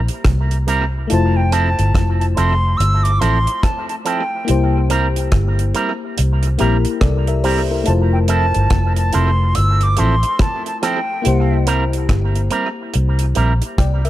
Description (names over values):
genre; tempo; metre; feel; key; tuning
lovers rock reggae; 71 BPM; 4/4; swing 61% on 16ths; F major; A4 = 440 Hz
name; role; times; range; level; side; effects
FM electric piano; accompaniment; 0.0-14.1 s; A3 to G5; -23 LUFS; left 6 dB; chorus
vintage muted fingered electric bass; bass; 0.0-14.1 s; F1 to C2; -16 LUFS; equal; none
deep reggae drum kit; drums; 0.1-14.1 s; hi-hat, kick drum, rim click; -21 LUFS; equal; dub echo
electric guitar with an envelope filter; stabs; 0.7-13.5 s; F3 to Bb4; -23 LUFS; right 4 dB; dub echo
silver concert flute; melody; 1.1-11.6 s; G5 to E6; -22 LUFS; right 1 dB; tape echo
room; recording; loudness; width
studio reverb; none; -14 LUFS; side -14 dB against mid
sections
0.0-14.1 A section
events
none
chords
0.0 C7; 1.1 Fmaj7; 4.5 C7; 7.9 Fmaj7; 11.2 C7